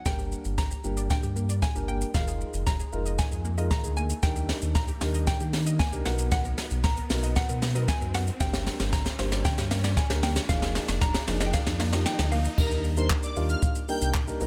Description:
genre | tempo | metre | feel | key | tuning
dance-pop | 115 BPM | 4/4 | straight | Eb major | A4 = 440 Hz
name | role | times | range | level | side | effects
hollow square pluck | melody | 0.0-12.6 s | F5 to Bb5 | -38 LUFS | equal | chorus, digital delay
riser | sound effects | 0.8-12.6 s | none | -43 LUFS | equal | none
dark baby grand piano | accompaniment | 0.1-14.5 s | F3 to C5 | -37 LUFS | equal | sidechain pumping
unison pluck | arpeggios | 0.1-12.4 s | D3 to Eb5 | -42 LUFS | equal | none
sub bass with octave | bass | 0.1-14.5 s | F1 to Eb3 | -31 LUFS | equal | sidechain pumping
jazz brush drum kit | drums | 0.1-14.5 s | crash cymbal, handclaps, hi-hat, kick drum, shaker, snare drum | -30 LUFS | equal | none
airy dreamy lead | melody | 12.6-14.1 s | Bb4 to G5 | -36 LUFS | equal | chorus
room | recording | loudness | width
little or no reverb | none | -27 LUFS | mono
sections
0.0-12.6 A section; 12.6-14.5 B section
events
build-up 0.0-12.6; drum fill 0.0-12.6; riser 0.8-12.6; drop 12.6-14.5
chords
0.1 Gm; 2.1 Bb7sus4/F; 4.2 Ebmaj7; 6.1 Bmaj7; 8.4 Gm; 10.5 Bb7sus4/F; 12.6 Ebmaj7

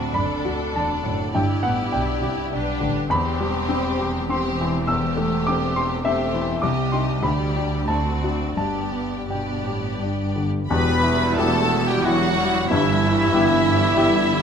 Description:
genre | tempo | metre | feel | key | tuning
classical, romantic movement for piano and orchestra | 82-105 BPM | 3/4 | rubato | G major, E minor from 10.7 s | A4 = 441 Hz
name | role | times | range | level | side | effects
clear grand piano | melody | 0.0-14.4 s | E1 to E6 | -23 LUFS | left 3 dB | none
rich studio violin section | melody | 0.0-14.4 s | B4 to B5 | -29 LUFS | left 2 dB | none
warm studio violin section | second line | 0.0-14.4 s | E4 to B4 | -29 LUFS | equal | none
rich studio viola section | accompaniment | 0.0-14.4 s | G3 to E4 | -30 LUFS | right 2 dB | none
warm studio cello section | bass | 0.0-14.4 s | C2 to C3 | -30 LUFS | right 2 dB | none
warm studio double bass section | bass | 0.0-14.4 s | E1 to D2 | -29 LUFS | right 4 dB | none
warm clarinet | second line | 10.7-14.4 s | E4 to B4 | -28 LUFS | left 1 dB | none
warm oboe | second line | 10.7-14.4 s | E4 to B4 | -28 LUFS | right 2 dB | none
mellow bassoon | accompaniment | 10.7-14.4 s | E4 to G4 | -28 LUFS | right 5 dB | none
mellow French horn section | sustained chords | 10.7-14.4 s | E3 to B3 | -28 LUFS | left 3 dB | none
dark tuba | bass | 10.7-14.4 s | E1 to G1 | -30 LUFS | right 5 dB | none
room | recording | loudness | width
moderate scoring stage reverb, RT60 1.9 s | close, detailed microphones | -19 LUFS | side -7 dB against mid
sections
0.0-10.7 A section; 10.7-14.4 B section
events
none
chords
0.0 D7; 1.3 G; 3.1 C/E; 4.9 Am7/E; 6.6 Cm; 7.2 G/D; 7.9 D7; 8.6 G; 10.7 Em; 12.7 Em/G

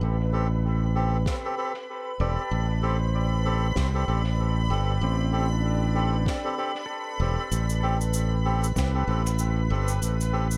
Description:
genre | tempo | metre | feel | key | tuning
ambient dub | 96 BPM | 4/4 | swing 59% on 16ths | A minor | A4 = 445 Hz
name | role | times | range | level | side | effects
granular cloud pad | sustained chords | 0.0-10.6 s | B5 | -38 LUFS | equal | built-in reverb
pedal steel guitar | arpeggios | 0.0-9.8 s | C4 to A5 | -41 LUFS | equal | low-pass filter, dub echo
modern bright fingered electric bass | bass | 0.0-10.6 s | E1 to C2 | -26 LUFS | equal | none
bubbling stepped-filter texture | texture | 0.0-10.6 s | B4 to D5 | -42 LUFS | equal | chorus, built-in reverb
melodica | stabs | 0.3-10.5 s | C4 to A4 | -34 LUFS | equal | dub echo
electronic kick drum | drums | 1.3-8.9 s | none | -31 LUFS | equal | none
snare drum and cabasa | drums | 1.3-10.6 s | none | -40 LUFS | equal | dub echo
room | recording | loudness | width
small room reverb | echo-heavy mix | -26 LUFS | mono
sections
0.0-10.6 A section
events
filter sweep on pedal steel guitar 0.0-10.6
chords
0.0 Am7

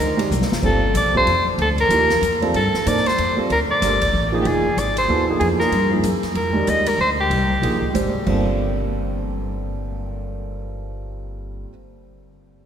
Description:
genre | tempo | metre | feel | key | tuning
modal jazz | 188 BPM | 3/4 | swing 61% on 8ths | G minor | A4 = 437 Hz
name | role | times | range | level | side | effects
warm soprano saxophone | melody | 0.0-7.9 s | G4 to Eb5 | -20 LUFS | equal | none
upright bass | bass | 0.0-11.6 s | F1 to A2 | -24 LUFS | equal | none
open jazz drum kit | drums | 0.0-10.1 s | crash cymbal, cymbal swell, hi-hat, kick drum, ride cymbal, snare drum, toms | -29 LUFS | equal | none
warm concert grand piano | accompaniment | 0.2-11.7 s | G2 to C5 | -23 LUFS | right 2 dB | none
room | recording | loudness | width
wet cathedral reverb, RT60 4.4 s | recorded in a church or concert hall | -17 LUFS | side -8 dB against mid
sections
0.6-8.3 A section; 8.3-10.2 B section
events
drum fill 0.3-0.6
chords
0.0 Fm11; 0.6 Gm11; 4.4 Fm11; 8.3 Gm11

